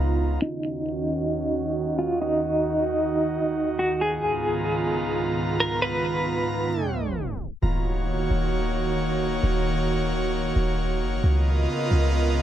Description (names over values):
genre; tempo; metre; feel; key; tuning
hip hop, atmospheric cloud-rap; 133 BPM; 4/4; half-time; Eb minor; A4 = 441 Hz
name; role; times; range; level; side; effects
airy breathy pad; sustained chords; 0.0-12.4 s; Db2 to Bb5; -25 LUFS; right 2 dB; chorus, low-pass filter
clean 808-style bass; bass; 0.0-0.4, 7.6-12.4 s; Eb1 to Db2; -24 LUFS; equal; none
clean electric guitar; melody; 0.4-7.1 s; Eb4 to Cb5; -25 LUFS; equal; tremolo, low-pass filter, digital delay
room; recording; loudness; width
light reverb; tape stop, lossy compression artefacts; -22 LUFS; side -11 dB against mid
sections
0.4-7.6 A section; 7.6-12.4 B section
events
filter sweep 0.4-7.6; tape stop 6.7-7.6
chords
0.4 Ebm7; 4.0 Db13; 7.6 Ebm7; 11.2 Db13